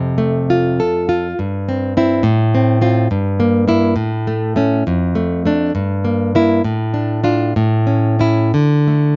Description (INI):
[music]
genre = romantic piece for solo classical guitar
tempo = 58-71 BPM (dotted quarters)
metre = 6/8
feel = rubato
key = D minor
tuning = A4 = 442 Hz
[part]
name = nylon-string guitar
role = solo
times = 0.0-9.2 s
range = F2 to A4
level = -16 LUFS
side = equal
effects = none
[sound]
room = little or no reverb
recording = recorded outdoors, with no room sound, nothing above 7.5 kHz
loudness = -16 LUFS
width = mono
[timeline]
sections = 0.0-9.2 A section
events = none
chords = 0.0 F; 1.4 C/G; 2.2 F/A; 3.1 Edim/G; 4.0 A; 4.9 Dm/F; 5.7 Edim/G; 6.6 Dm/A; 7.6 A; 8.5 D5